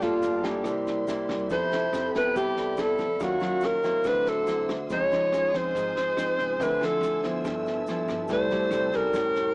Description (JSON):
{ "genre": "bossa nova", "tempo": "142 BPM", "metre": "4/4", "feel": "straight", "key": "C major", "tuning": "A4 = 437 Hz", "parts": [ { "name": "clear alto saxophone", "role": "melody", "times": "0.0-9.5 s", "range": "F4 to Db5", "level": "-25 LUFS", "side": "equal", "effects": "none" }, { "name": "nylon-string guitar", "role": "accompaniment", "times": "0.0-9.5 s", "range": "G2 to A4", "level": "-32 LUFS", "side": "equal", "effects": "none" }, { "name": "vibraphone with medium mallets", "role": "accompaniment", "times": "0.0-9.5 s", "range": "E4 to C6", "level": "-31 LUFS", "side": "equal", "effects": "none" }, { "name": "warm symphonic string section", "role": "sustained chords", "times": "0.0-9.5 s", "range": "A4 to E6", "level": "-39 LUFS", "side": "equal", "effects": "none" }, { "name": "upright bass", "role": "bass", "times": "0.0-9.5 s", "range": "G1 to F2", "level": "-39 LUFS", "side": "equal", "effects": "none" }, { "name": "vintage brush drum kit", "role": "drums", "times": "0.0-9.4 s", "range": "kick drum, rim click, snare drum", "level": "-39 LUFS", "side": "equal", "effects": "none" }, { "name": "tube shaker", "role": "percussion", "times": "0.0-9.5 s", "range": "none", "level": "-58 LUFS", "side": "left 1 dB", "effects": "none" } ], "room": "light reverb", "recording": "worn, warbling old tape, cassette tape, warbly pitch drift, small speaker sound", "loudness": "-24 LUFS", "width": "side -34 dB against mid", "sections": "0.0-9.5 A section", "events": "none", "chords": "0.0 Gm9; 0.7 C7; 1.5 Fmaj9#11; 3.2 Ebm9; 4.1 D9; 4.9 Dbmaj9; 6.6 Dm9; 7.4 G13; 8.3 C6" }